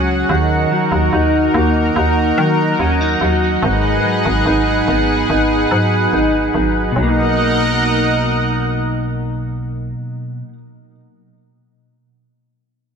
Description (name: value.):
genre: dream pop.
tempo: 72 BPM.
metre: 4/4.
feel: straight.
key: B major.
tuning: A4 = 439 Hz.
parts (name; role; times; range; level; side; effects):
lush unison pad; sustained chords; 0.0-10.0 s; C#4 to F#5; -17 LUFS; right 1 dB; chorus.
mellow electric guitar; arpeggios; 0.0-10.6 s; G#2 to D#4; -18 LUFS; left 1 dB; ensemble chorus, ping-pong delay.
hollow knocking FM bass; bass; 0.0-10.0 s; G#1 to D#3; -20 LUFS; equal; none.
room: moderate plate reverb, RT60 3.5 s.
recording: bright 1980s-style digital production.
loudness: -13 LUFS.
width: side -6 dB against mid.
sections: 0.0-7.0 A section; 7.0-10.3 B section.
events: none.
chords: 0.3 D#m; 3.6 G#m7; 7.0 Bmaj7.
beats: | 0.29 1.13 1.96 2.79 | 3.63 4.46 5.29 6.13 | 6.96 7.79 8.63 9.46.